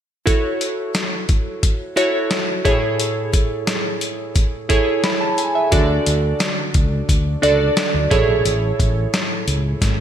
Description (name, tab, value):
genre	1980s-style pop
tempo	88 BPM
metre	4/4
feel	straight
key	A major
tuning	A4 = 440 Hz
part	glassy digital keys	accompaniment	0.3-10.0 s	A2 to B5	-19 LUFS	right 2 dB	chorus
part	boom bap sampler-style drum kit	drums	0.3-10.0 s	hi-hat, kick drum, snare drum	-19 LUFS	equal	none
part	mellow fretless electric bass	bass	5.7-10.0 s	G#1 to D2	-20 LUFS	equal	none
room	light reverb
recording	none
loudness	-16 LUFS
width	side -9 dB against mid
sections	0.3-10.0 A section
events	drum fill 9.8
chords	0.3 F#m7; 2.7 Amaj7; 5.7 D; 8.1 Amaj7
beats	| 0.27 0.95 1.64 2.32 | 3.00 3.68 4.36 5.04 | 5.73 6.41 7.09 7.77 | 8.45 9.13 9.82